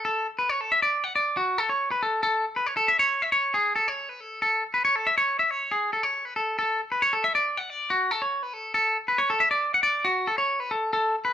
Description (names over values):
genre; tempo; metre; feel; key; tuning
rock; 138 BPM; 5/4; straight; unclear; A4 = 440 Hz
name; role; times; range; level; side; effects
twangy electric guitar; solo; 0.0-11.3 s; F#4 to F#5; -22 LUFS; equal; none
room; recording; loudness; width
light reverb; band playing live in one room; -22 LUFS; side -10 dB against mid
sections
0.0-11.3 A section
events
none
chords
none